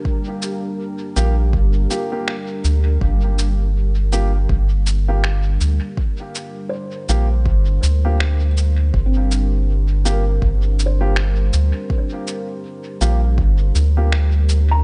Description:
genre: ambient dub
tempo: 81 BPM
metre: 4/4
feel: swing 58% on 16ths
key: G minor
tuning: A4 = 439 Hz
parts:
  - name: deep dark ambient pad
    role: sustained chords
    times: 0.0-14.8 s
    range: G3 to Bb4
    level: -32 LUFS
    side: equal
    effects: chorus, built-in reverb
  - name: electronic kick drum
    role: drums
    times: 0.1-13.6 s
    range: none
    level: -23 LUFS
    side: equal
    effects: overdrive
  - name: electronic cabasa and finger snaps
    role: drums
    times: 0.4-14.7 s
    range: none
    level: -29 LUFS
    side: equal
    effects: dub echo
  - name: dark upright piano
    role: stabs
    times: 1.2-14.1 s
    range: Bb3 to G4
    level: -31 LUFS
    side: equal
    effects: dub echo
  - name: round analog bass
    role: bass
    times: 1.2-14.8 s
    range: G1 to D2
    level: -18 LUFS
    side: equal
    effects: none
  - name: felt-muted upright piano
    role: arpeggios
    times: 6.7-14.8 s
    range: C4 to Bb5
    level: -32 LUFS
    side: equal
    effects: dub echo
room: digital ambience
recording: nothing above 10.4 kHz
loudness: -18 LUFS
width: mono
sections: 0.0-14.8 A section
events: none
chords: 0.0 Gm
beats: | 0.05 0.79 1.53 2.27 | 3.01 3.75 4.50 5.24 | 5.98 6.72 7.46 8.20 | 8.94 9.68 10.42 11.16 | 11.90 12.64 13.38 14.12

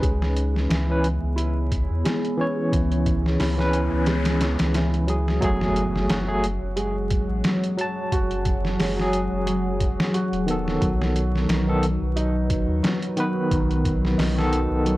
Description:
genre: trip hop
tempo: 89 BPM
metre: 4/4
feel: swing 56% on 16ths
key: F# dorian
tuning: A4 = 440 Hz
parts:
  - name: barky tine electric piano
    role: accompaniment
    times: 0.0-15.0 s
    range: D#3 to A5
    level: -26 LUFS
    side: equal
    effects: tremolo, tape echo
  - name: deep dark ambient pad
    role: sustained chords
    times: 0.1-15.0 s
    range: F#3 to F#5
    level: -29 LUFS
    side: left 1 dB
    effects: chorus, built-in reverb
  - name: felt-muted upright piano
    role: arpeggios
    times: 0.0-15.0 s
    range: D#3 to F#4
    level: -29 LUFS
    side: right 2 dB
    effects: tape echo
  - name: warm sub bass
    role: bass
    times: 0.0-15.0 s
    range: E1 to E2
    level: -25 LUFS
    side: equal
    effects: tube saturation
  - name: trip hop sampler-style drum kit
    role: drums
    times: 0.0-15.0 s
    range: hi-hat, kick drum, snare drum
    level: -26 LUFS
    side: equal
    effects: none
  - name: noise sweep and impact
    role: sound effects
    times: 3.2-8.1 s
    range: none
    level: -36 LUFS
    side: left 1 dB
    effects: none
room: little or no reverb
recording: dry, gritty hardware recording, vinyl crackle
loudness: -20 LUFS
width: side -18 dB against mid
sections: 0.0-5.4 A section; 5.4-15.0 B section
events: noise sweep 3.2-5.4; impact 5.4-8.1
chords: 0.0 C#m7; 5.4 F#madd9; 10.8 B7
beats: | 0.03 0.70 1.38 2.05 | 2.73 3.40 4.08 4.75 | 5.42 6.10 6.77 7.45 | 8.12 8.79 9.47 10.14 | 10.82 11.49 12.16 12.84 | 13.51 14.19 14.86

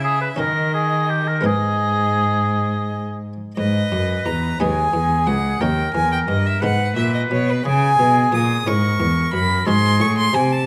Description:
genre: classical, baroque-style sonata movement with continuo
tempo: 58 BPM (dotted quarters)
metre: 6/8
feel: uneven beats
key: G# minor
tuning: A4 = 441 Hz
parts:
  - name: rich violin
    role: melody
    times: 0.0-10.7 s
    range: B4 to D#6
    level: -25 LUFS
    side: equal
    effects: none
  - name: warm oboe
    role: second line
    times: 0.0-10.4 s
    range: G4 to B4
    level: -25 LUFS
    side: equal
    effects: none
  - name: buff-stop harpsichord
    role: accompaniment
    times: 0.0-10.6 s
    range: C#2 to F#4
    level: -28 LUFS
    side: equal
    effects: none
  - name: rich cello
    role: bass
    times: 0.0-10.7 s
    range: C#2 to D#3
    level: -23 LUFS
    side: equal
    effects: none
room: moderate recital hall reverb, RT60 1.6 s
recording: none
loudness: -19 LUFS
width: mono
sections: 0.0-3.6 A section; 3.6-10.7 B section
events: none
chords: 0.4 D#7(no3); 1.4 G#m; 5.6 D#7; 6.6 G#m; 7.7 C#m; 9.7 G#7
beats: 0.39 | 1.45 2.51 | 3.57 4.59 | 5.60 6.62 | 7.65 8.67 | 9.67

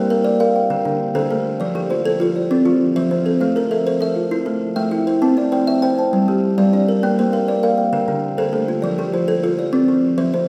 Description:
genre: southern african traditional, mbira-style interlocking cycle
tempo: 133 BPM (dotted quarters)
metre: 12/8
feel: straight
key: unclear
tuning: A4 = 438 Hz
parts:
  - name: buzzing kalimba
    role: arpeggios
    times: 0.0-10.5 s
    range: D3 to G5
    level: -20 LUFS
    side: equal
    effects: none
  - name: kalimba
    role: arpeggios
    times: 0.0-10.5 s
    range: D3 to A5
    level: -22 LUFS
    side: equal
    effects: none
room: wet recital hall reverb, RT60 1.5 s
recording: recorded in a church or concert hall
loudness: -18 LUFS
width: mono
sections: 0.0-10.5 A section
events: none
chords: 0.0 Bb; 0.7 Dm; 1.6 F; 3.4 Am; 5.2 C; 6.1 Gm; 7.0 Bb; 7.9 Dm; 8.8 F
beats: 0.25 0.70 1.15 | 1.60 2.05 2.50 2.96 | 3.41 3.86 4.31 4.76 | 5.21 5.67 6.12 6.57 | 7.02 7.47 7.92 8.38 | 8.83 9.28 9.73 10.18

